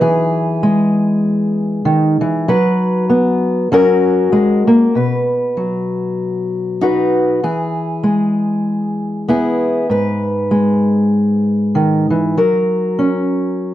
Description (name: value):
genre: folk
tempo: 97 BPM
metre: 4/4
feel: swing 56% on 8ths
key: B major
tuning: A4 = 439 Hz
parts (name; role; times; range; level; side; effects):
- fingerpicked old ladder-braced acoustic guitar; solo; 0.0-13.7 s; G#2 to B4; -13 LUFS; equal; none
room: light reverb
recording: dark, warm production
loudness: -13 LUFS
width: side -13 dB against mid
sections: 0.0-4.9 A section; 4.9-13.7 B section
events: none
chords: 0.0 Eadd9; 2.5 F#sus4; 3.7 F#; 4.9 B; 7.4 E; 9.9 G#m; 12.4 F#